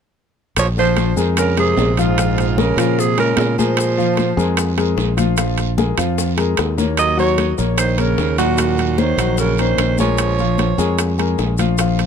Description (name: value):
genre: Afro-Cuban jazz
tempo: 150 BPM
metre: 4/4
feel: straight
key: Bb minor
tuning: A4 = 440 Hz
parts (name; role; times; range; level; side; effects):
- growling alto saxophone; melody; 0.6-11.2 s; F4 to Eb5; -21 LUFS; right 4 dB; tape echo
- growling baritone saxophone; second line; 0.6-11.2 s; Ab2 to Gb3; -23 LUFS; right 8 dB; none
- modern bright fingered electric bass; bass; 0.6-12.1 s; Bb1 to Bb2; -19 LUFS; equal; none
- bongos; percussion; 0.6-12.1 s; none; -28 LUFS; left 6 dB; none
- congas; percussion; 0.6-12.1 s; none; -26 LUFS; left 4 dB; none
- guiro; percussion; 0.6-12.1 s; none; -33 LUFS; right 9 dB; none
- maracas; percussion; 0.6-12.1 s; none; -30 LUFS; left 7 dB; none
- timbales; percussion; 0.6-12.1 s; none; -23 LUFS; right 8 dB; none
- warm concert grand piano; accompaniment; 0.8-12.1 s; F3 to Gb5; -20 LUFS; left 6 dB; none
room: light reverb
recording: close, detailed microphones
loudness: -14 LUFS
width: side -7 dB against mid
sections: 0.6-12.1 A section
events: drum fill 6.6-7.0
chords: 0.6 Bb7sus2; 7.0 Ebm7; 10.2 Bbm7